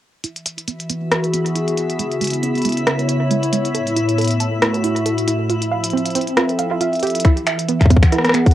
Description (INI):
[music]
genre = IDM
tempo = 137 BPM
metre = 4/4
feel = swing 56% on 16ths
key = E major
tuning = A4 = 440 Hz
[part]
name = hollow soft pad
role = sustained chords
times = 0.2-8.5 s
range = A2 to F#5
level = -20 LUFS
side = left 1 dB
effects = chorus
[part]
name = warbly dusty pluck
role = arpeggios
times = 0.2-8.4 s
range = G#3 to A5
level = -23 LUFS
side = right 7 dB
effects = chorus, analog delay
[part]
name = glitchy drum kit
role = drums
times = 0.2-8.5 s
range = finger snaps, hi-hat, rim click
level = -21 LUFS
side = equal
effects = overdrive, cassette tape
[part]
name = backwards swelling texture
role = texture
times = 1.1-7.3 s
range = E4 to E5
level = -26 LUFS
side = left 2 dB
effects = built-in reverb, sidechain pumping
[part]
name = electronic kick drum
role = drums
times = 7.2-8.5 s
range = none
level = -11 LUFS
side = left 1 dB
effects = overdrive, cassette tape
[sound]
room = light reverb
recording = home recording on cassette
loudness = -16 LUFS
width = side -13 dB against mid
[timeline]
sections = 0.2-7.2 A section; 7.2-8.5 B section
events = filter sweep on synth arpeggio sound 0.2-7.2; drum fill 7.0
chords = 0.2 Eadd9; 2.0 C#m7; 3.7 A6; 5.5 Fmaj7; 7.2 Eadd9